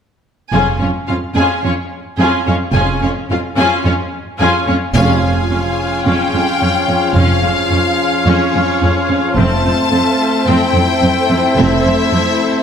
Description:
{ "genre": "cinematic", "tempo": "109 BPM", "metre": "4/4", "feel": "straight", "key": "unclear", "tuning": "A4 = 440 Hz", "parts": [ { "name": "warm symphonic violin section", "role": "second line", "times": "0.5-12.6 s", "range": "Db4 to Ab5", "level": "-20 LUFS", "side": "left 3 dB", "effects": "none" }, { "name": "rich symphonic viola section", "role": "accompaniment", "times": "0.5-12.6 s", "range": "C4 to F4", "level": "-20 LUFS", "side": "equal", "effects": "none" }, { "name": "clear symphonic double bass section", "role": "bass", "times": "0.5-11.8 s", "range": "F1", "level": "-18 LUFS", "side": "right 2 dB", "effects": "none" }, { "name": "warm symphonic cello section", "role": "bass", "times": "0.5-12.2 s", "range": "F2", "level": "-17 LUFS", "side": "right 2 dB", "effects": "none" }, { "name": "rich studio violin section", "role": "melody", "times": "4.9-12.6 s", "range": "Db5 to A5", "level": "-19 LUFS", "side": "left 5 dB", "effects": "none" }, { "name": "dark French horn section", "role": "sustained chords", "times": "5.0-12.6 s", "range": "F3 to Db4", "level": "-19 LUFS", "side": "equal", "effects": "none" }, { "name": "mellow woodwind section", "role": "sustained chords", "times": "5.0-12.6 s", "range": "C4 to F5", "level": "-21 LUFS", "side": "equal", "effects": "none" } ], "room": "wet scoring stage reverb, RT60 1.8 s", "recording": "none", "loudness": "-12 LUFS", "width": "side -7 dB against mid", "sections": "0.5-5.0 A section; 5.0-12.6 B section", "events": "band accent 5.0-5.5", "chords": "0.5 Db/F; 9.4 Am/F" }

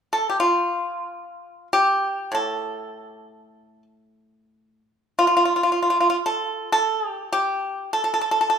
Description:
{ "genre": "chinese traditional, Chinese solo plucked strings", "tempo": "free time", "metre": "none", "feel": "none", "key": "unclear", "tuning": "A4 = 441 Hz", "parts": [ { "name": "pipa", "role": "solo", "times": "0.1-8.6 s", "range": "A2 to A4", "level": "-20 LUFS", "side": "equal", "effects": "none" } ], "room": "moderate recital hall reverb, RT60 1.7 s", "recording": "recorded in a church or concert hall", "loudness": "-20 LUFS", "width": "side -7 dB against mid", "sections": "0.0-8.6 A section", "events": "none", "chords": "none" }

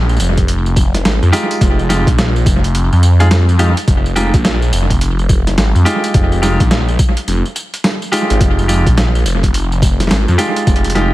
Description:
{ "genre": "glitch hop", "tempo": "106 BPM", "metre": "4/4", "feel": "swing 62% on 16ths", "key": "F minor", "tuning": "A4 = 442 Hz", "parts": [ { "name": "phased detuned saw bass", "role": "bass", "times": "0.0-11.1 s", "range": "F1 to F2", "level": "-13 LUFS", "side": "equal", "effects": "phaser, overdrive" }, { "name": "boom bap sampler-style drum kit", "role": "drums", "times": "0.1-11.1 s", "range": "hi-hat, snare drum, tambourine", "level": "-19 LUFS", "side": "equal", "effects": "overdrive, analog delay" }, { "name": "electronic kick drum", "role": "drums", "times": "0.4-10.8 s", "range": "none", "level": "-13 LUFS", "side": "equal", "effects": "overdrive" }, { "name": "semi-hollow electric guitar", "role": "stabs", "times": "1.3-11.1 s", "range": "Ab3 to Ab4", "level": "-18 LUFS", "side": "equal", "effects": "sidechain pumping, analog delay" } ], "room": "light reverb, digital ambience", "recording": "echo-heavy mix, vinyl crackle", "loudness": "-11 LUFS", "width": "side -17 dB against mid", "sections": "0.0-11.1 A section", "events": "none", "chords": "0.0 Fm9" }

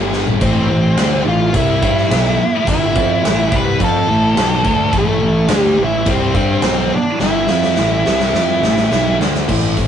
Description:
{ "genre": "quiet-loud alternative rock", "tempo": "106 BPM", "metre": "4/4", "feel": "straight", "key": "A minor", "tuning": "A4 = 440 Hz", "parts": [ { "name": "thick fuzz guitar", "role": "riff", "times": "0.0-9.9 s", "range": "G2 to G4", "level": "-18 LUFS", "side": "equal", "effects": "distortion" }, { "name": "fuzz picked electric bass", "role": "bass", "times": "0.0-9.9 s", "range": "G1 to G2", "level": "-21 LUFS", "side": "equal", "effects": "overdrive" }, { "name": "big rock drum kit", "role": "drums", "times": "0.1-9.9 s", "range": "crash cymbal, hi-hat, kick drum, snare drum, toms", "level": "-19 LUFS", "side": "left 1 dB", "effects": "none" }, { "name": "octave-fuzz lead guitar", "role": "melody", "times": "0.4-9.2 s", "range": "A3 to B4", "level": "-17 LUFS", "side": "right 1 dB", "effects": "distortion" }, { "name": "twelve-string electric guitar", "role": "arpeggios", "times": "9.5-9.9 s", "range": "A2 to C4", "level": "-24 LUFS", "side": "equal", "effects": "none" } ], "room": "moderate booth ambience, RT60 0.2 s", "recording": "rough rehearsal-room recording, nothing above 10.9 kHz", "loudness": "-12 LUFS", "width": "side -9 dB against mid", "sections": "0.0-9.5 A section", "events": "drum fill 0.1, 7.2-9.5", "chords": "0.4 Am" }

